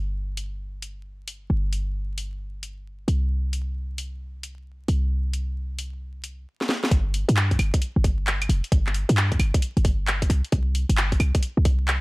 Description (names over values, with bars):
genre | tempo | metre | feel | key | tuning
UK garage, two-step garage | 133 BPM | 4/4 | swing 65% on 16ths | unclear | A4 = 439 Hz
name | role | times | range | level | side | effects
short 808-style bass | bass | 0.0-12.0 s | F1 to G2 | -24 LUFS | equal | sidechain pumping
garage drum kit | drums | 0.4-12.0 s | claves, finger snaps, handclaps, hi-hat, snare drum | -27 LUFS | equal | none
electronic kick drum | drums | 6.9-11.8 s | none | -22 LUFS | equal | none
room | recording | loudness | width
digital ambience | vinyl crackle | -21 LUFS | side -23 dB against mid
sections
0.0-6.9 A section; 6.9-12.0 B section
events
drum fill 6.6-6.9; drop 6.9-12.0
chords
none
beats
0.15 0.60 1.05 | 1.50 1.95 2.40 2.85 | 3.31 3.76 4.21 4.66 | 5.11 5.56 6.01 6.46 | 6.91 7.37 7.82 8.27 | 8.72 9.17 9.62 10.07 | 10.52 10.97 11.43 11.88